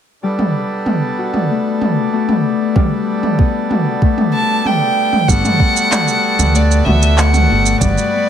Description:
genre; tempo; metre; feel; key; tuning
folktronica; 95 BPM; 4/4; straight; G major; A4 = 440 Hz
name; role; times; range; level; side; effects
accordion; sustained chords; 0.2-8.3 s; G3 to B4; -22 LUFS; right 3 dB; none
Celtic harp; arpeggios; 0.2-8.3 s; G3 to F#4; -19 LUFS; left 7 dB; low-pass filter, ping-pong delay
organic electronic drum kit; drums; 0.4-8.1 s; handclaps, shaker, toms; -19 LUFS; right 2 dB; none
electronic kick drum; drums; 2.8-7.9 s; none; -14 LUFS; right 1 dB; none
warm violin; melody; 4.3-8.3 s; D5 to A5; -16 LUFS; right 1 dB; ping-pong delay
upright bass; bass; 5.3-7.9 s; G1 to D2; -14 LUFS; right 1 dB; tube saturation
room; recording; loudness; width
light reverb, small room reverb; none; -12 LUFS; side -9 dB against mid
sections
0.2-5.3 A section; 5.3-8.3 B section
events
kick drops out 4.7-5.3; filter sweep on harp 5.3-8.3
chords
0.2 Gmaj9

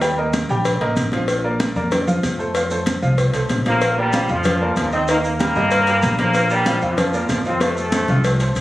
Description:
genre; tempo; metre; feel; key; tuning
latin, salsa; 190 BPM; 4/4; straight; Bb major; A4 = 440 Hz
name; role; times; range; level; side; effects
bright baby grand piano; accompaniment; 0.0-8.6 s; Eb3 to G5; -22 LUFS; right 1 dB; none
upright bass; bass; 0.0-8.6 s; A1 to G2; -23 LUFS; equal; none
congas; percussion; 0.0-8.2 s; none; -24 LUFS; equal; none
cowbell; percussion; 0.0-8.6 s; none; -24 LUFS; left 2 dB; none
maracas; percussion; 0.0-8.6 s; none; -35 LUFS; right 1 dB; none
bright trombone section; melody; 3.7-8.4 s; A2 to C4; -20 LUFS; equal; none
room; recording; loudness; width
moderate studio reverb, RT60 0.6 s; recorded on a phone in the room, studio reverb, compression; -16 LUFS; side -16 dB against mid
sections
0.0-3.8 A section; 3.8-8.6 B section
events
drum fill 7.6-8.6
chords
0.0 Eb; 1.3 Bb; 5.1 Eb; 6.3 Bb; 7.6 F

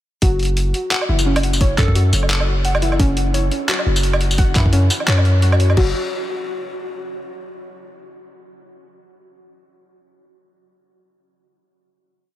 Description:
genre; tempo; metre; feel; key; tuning
half-time drum and bass; 173 BPM; 4/4; swing 58% on 16ths, half-time; F# minor; A4 = 440 Hz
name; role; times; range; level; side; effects
warbly dusty pluck; arpeggios; 0.2-5.9 s; C#4 to F#5; -24 LUFS; left 1 dB; chorus, diffuse ambient delay
long sustained 808-style bass; bass; 0.2-5.9 s; F#1 to F#2; -16 LUFS; equal; tube saturation
boom bap sampler-style drum kit; drums; 0.2-5.9 s; crash cymbal, handclaps, hi-hat, tambourine, woodblock; -22 LUFS; equal; small room ambience
electronic kick drum; drums; 0.2-5.9 s; none; -16 LUFS; equal; small room ambience
glassy wavetable pluck; melody; 1.8-2.1 s; A4; -33 LUFS; equal; chorus, diffuse ambient delay
room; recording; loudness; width
light reverb, digital ambience; none; -15 LUFS; side -14 dB against mid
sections
0.2-5.8 drop; 5.8-7.2 final note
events
drop 0.2-5.8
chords
0.2 F#5; 5.8 N.C.

